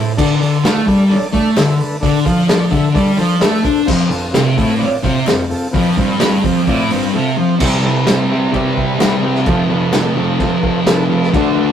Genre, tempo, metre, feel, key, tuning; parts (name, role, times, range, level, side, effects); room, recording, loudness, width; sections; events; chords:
garage rock duo or trio; 129 BPM; 4/4; straight; A4 = 440 Hz
combo organ; sustained chords; 0.0-11.7 s; C4 to F5; -22 LUFS; equal
thick fuzz guitar; riff; 0.0-11.7 s; F2 to D4; -14 LUFS; equal; distortion
vintage drum kit; drums; 0.2-11.5 s; crash cymbal, hi-hat, kick drum, snare drum; -18 LUFS; equal
group handclap; percussion; 0.7-11.0 s; -32 LUFS; left 3 dB
moderate stone room reverb, RT60 1.1 s; rough rehearsal-room recording, tube saturation; -12 LUFS; side -9 dB against mid
0.0-7.6 A section; 7.6-11.7 B section
0.2 D5; 3.9 F5; 7.6 C; 9.5 F